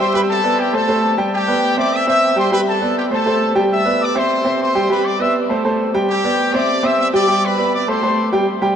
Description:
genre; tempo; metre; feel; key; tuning
latin; 202 BPM; 4/4; straight; G major; A4 = 440 Hz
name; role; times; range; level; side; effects
brilliant trumpet section; melody; 0.0-8.3 s; G4 to E6; -18 LUFS; left 1 dB; none
clear baby grand piano; accompaniment; 0.0-8.8 s; G3 to G5; -16 LUFS; right 1 dB; none
room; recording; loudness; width
wet cathedral reverb, RT60 5.9 s; in a vast, echoing space; -14 LUFS; side -8 dB against mid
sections
0.0-8.5 A section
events
none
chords
0.1 G; 0.7 Gsus24; 1.3 G; 1.9 C; 2.5 G; 3.1 Gsus24; 3.7 G; 4.3 C; 4.9 G; 5.5 Gsus24; 6.1 G; 6.7 C; 7.3 G; 7.9 Gsus24

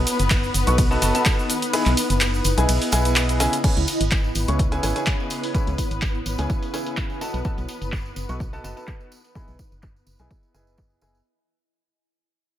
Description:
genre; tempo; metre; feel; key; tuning
piano house; 126 BPM; 4/4; swing 54% on 16ths; C# minor; A4 = 441 Hz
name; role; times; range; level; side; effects
muted studio string section; sustained chords; 0.0-11.3 s; B3 to B4; -29 LUFS; left 2 dB; sidechain pumping
organ-like FM bass; bass; 0.0-11.2 s; F#1 to C#2; -23 LUFS; equal; sidechain pumping
granular cloud pad; texture; 0.0-11.3 s; D#4 to B5; -31 LUFS; right 1 dB; built-in reverb, sidechain pumping
punchy analog drum machine; drums; 0.1-11.2 s; crash cymbal, handclaps, hi-hat, ride cymbal, shaker; -26 LUFS; equal; low-pass filter on hats, low-pass filter on perc, low-pass filter on cymbals, low-pass filter on snare
tambourine; percussion; 0.1-11.2 s; none; -37 LUFS; right 2 dB; none
electronic kick drum; drums; 0.3-10.9 s; none; -23 LUFS; equal; none
warm baby grand piano; riff; 0.7-11.2 s; C#3 to C#6; -26 LUFS; equal; sidechain pumping, low-pass filter, tape echo
room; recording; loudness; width
light reverb; none; -19 LUFS; side -12 dB against mid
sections
0.0-3.6 A section; 3.6-11.3 B section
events
drop 0.0-3.6; kick drops out 1.7-3.6; fade-out 3.6-11.3; filter sweep on FM bass 3.6-11.3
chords
0.0 B7; 1.5 Emaj7; 3.6 C#m7; 7.2 B7; 9.1 Emaj7

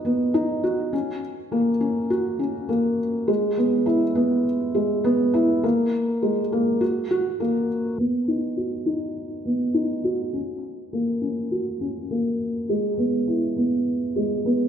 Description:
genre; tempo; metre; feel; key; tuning
electronica; 102 BPM; 4/4; straight; B major; A4 = 440 Hz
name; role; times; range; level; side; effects
felt-muted upright piano; solo; 0.0-14.7 s; G#3 to F#4; -21 LUFS; equal; none
room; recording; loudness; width
wet recital hall reverb, RT60 1.4 s; low-pass filter; -21 LUFS; side -8 dB against mid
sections
0.0-8.0 A section; 8.0-14.7 B section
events
none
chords
none

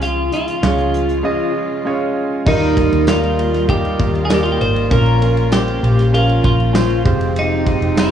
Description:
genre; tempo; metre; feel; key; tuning
piano-driven pop; 98 BPM; 4/4; straight; Eb mixolydian; A4 = 438 Hz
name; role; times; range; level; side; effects
twelve-string electric guitar; melody; 0.0-8.1 s; Eb4 to C5; -19 LUFS; equal; none
warm concert grand piano; accompaniment; 0.0-8.1 s; Bb2 to Eb5; -19 LUFS; right 2 dB; none
warm studio string section; sustained chords; 0.0-8.1 s; Db3 to G4; -27 LUFS; left 1 dB; none
vintage muted fingered electric bass; bass; 0.0-8.1 s; F1 to Eb2; -17 LUFS; left 1 dB; none
natural country drum kit; drums; 0.0-8.1 s; crash cymbal, handclaps, hi-hat, kick drum, ride cymbal, snare drum; -20 LUFS; equal; none
tambourine; percussion; 3.1-8.1 s; none; -36 LUFS; left 3 dB; none
room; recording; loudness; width
light reverb; worn, warbling old tape, cassette tape, warbly pitch drift, small room reverb; -13 LUFS; side -9 dB against mid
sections
0.0-2.5 A section; 2.5-8.1 B section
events
none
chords
0.0 Db; 2.5 Ebadd9; 4.9 Bbm; 7.1 Fmadd9

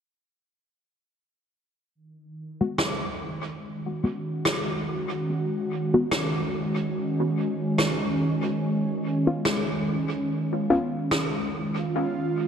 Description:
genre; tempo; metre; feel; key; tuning
ambient dub; 72 BPM; 4/4; swing 57% on 16ths; G# dorian; A4 = 440 Hz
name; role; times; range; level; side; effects
airy breathy pad; sustained chords; 2.0-12.5 s; D#3 to F#4; -27 LUFS; right 1 dB; chorus
filtered dub chord stab; stabs; 2.6-10.9 s; G#3 to F#4; -26 LUFS; left 2 dB; chorus, cassette tape, dub echo
rim click; drums; 2.8-11.3 s; none; -28 LUFS; equal; small room reverb, dub echo
room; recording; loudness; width
moderate echo chamber reverb, RT60 2.3 s; dark, warm production; -24 LUFS; side -7 dB against mid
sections
2.0-12.5 A section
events
fade-in on analog synth pad 2.0-12.5; filter sweep on synth stab 2.0-12.5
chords
2.0 G#m7; 8.6 C#7

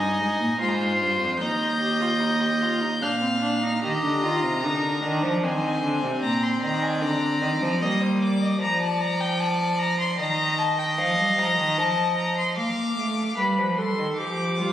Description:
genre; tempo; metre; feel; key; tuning
classical, baroque-style fugue for string quartet; 75 BPM; 3/4; straight; Eb major; A4 = 439 Hz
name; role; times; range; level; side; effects
rich violin; melody; 0.0-14.7 s; F5 to G6; -27 LUFS; left 4 dB; none
warm violin; second line; 0.0-13.4 s; Bb4 to F5; -28 LUFS; equal; none
dark viola; accompaniment; 0.0-8.6, 13.4-14.7 s; Bb3 to B4; -28 LUFS; equal; none
rich cello; bass; 0.0-14.7 s; Eb2 to Bb3; -25 LUFS; right 1 dB; none
room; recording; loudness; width
moderate concert hall reverb, RT60 2.0 s; recorded on a phone in the room, studio reverb, compression; -21 LUFS; side -11 dB against mid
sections
0.0-3.8 A section; 3.8-13.4 B section; 13.4-14.7 A section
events
none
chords
0.0 Fm7; 1.4 Ebadd9; 3.0 Bb; 3.8 Eb; 5.4 Ab/Eb; 6.2 Bb; 7.8 Eb/G; 8.6 Bb/F; 10.2 Eb5; 11.0 F7; 12.6 Bb; 13.4 G7

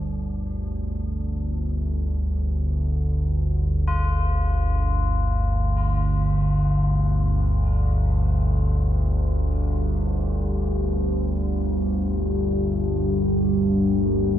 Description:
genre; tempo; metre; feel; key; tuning
dark ambient drone; free time; none; none; unclear; A4 = 439 Hz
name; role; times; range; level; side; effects
tubular bells; arpeggios; 0.0-14.4 s; D4 to F4; -35 LUFS; left 7 dB; tape echo
analog drone; drone; 0.0-14.4 s; G1 to D2; -21 LUFS; equal; wide subtle chorus
deep dark ambient pad; sustained chords; 9.3-14.4 s; G3 to Bb4; -24 LUFS; equal; chorus, built-in reverb
room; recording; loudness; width
moderate cathedral reverb, RT60 5.2 s; dark, warm production; -21 LUFS; side -11 dB against mid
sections
0.0-14.4 A section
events
fade-in on tubular bells 0.0-14.4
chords
0.0 Gm

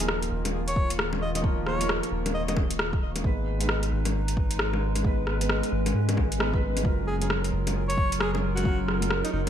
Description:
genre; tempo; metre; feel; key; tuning
future garage; 133 BPM; 4/4; swing 62% on 16ths; Eb minor; A4 = 440 Hz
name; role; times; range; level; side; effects
warm alto saxophone; melody; 0.0-2.5, 7.1-9.4 s; Eb4 to Eb5; -33 LUFS; equal; ping-pong delay
felt-muted upright piano; accompaniment; 0.0-9.5 s; F3 to Cb5; -34 LUFS; right 3 dB; wide subtle chorus, sidechain pumping, digital delay
warbly tape-like pad; sustained chords; 0.0-9.5 s; Eb3 to Cb5; -32 LUFS; left 1 dB; chorus, built-in reverb, sidechain pumping
soft dub sub bass; bass; 0.0-9.5 s; Eb1 to Ab2; -29 LUFS; equal; tube saturation, sidechain pumping
deep house drum kit; drums; 0.0-9.5 s; bongos, hi-hat, rim click; -30 LUFS; left 2 dB; overdrive, gated reverb
electronic kick drum; drums; 0.8-8.8 s; none; -26 LUFS; equal; overdrive
room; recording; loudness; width
light reverb; bright 1980s-style digital production; -24 LUFS; side -9 dB against mid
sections
0.0-9.5 A section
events
none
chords
0.0 Ebsus2; 3.2 Abm; 6.8 Gbmaj7

